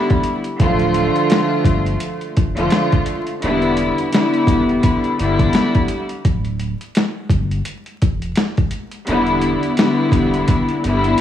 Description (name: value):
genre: hip hop, boom-bap hip-hop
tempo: 85 BPM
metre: 4/4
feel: swing 58% on 16ths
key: D dorian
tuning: A4 = 436 Hz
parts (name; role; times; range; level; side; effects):
- warm studio string section; accompaniment; 0.0-11.2 s; D3 to F4; -16 LUFS; left 1 dB; high-pass filter, low-pass filter
- boom bap sampler-style drum kit; drums; 0.1-11.2 s; hi-hat, kick drum, snare drum; -18 LUFS; equal; overdrive
- saturated sub bass; bass; 0.6-11.2 s; D1 to G1; -22 LUFS; equal; tube saturation
room: light reverb, digital ambience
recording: worn, warbling old tape, cassette tape, vinyl crackle, warbly pitch drift, studio ambience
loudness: -15 LUFS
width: side -10 dB against mid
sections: 0.0-11.2 A section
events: break 6.2-9.1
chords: 0.0 Em7; 0.6 Dm; 3.4 Em7; 6.2 Dm; 9.1 Em7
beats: | 0.60 1.31 2.01 2.72 | 3.42 4.13 4.84 5.54 | 6.25 6.95 7.66 8.37 | 9.07 9.78 10.48 11.19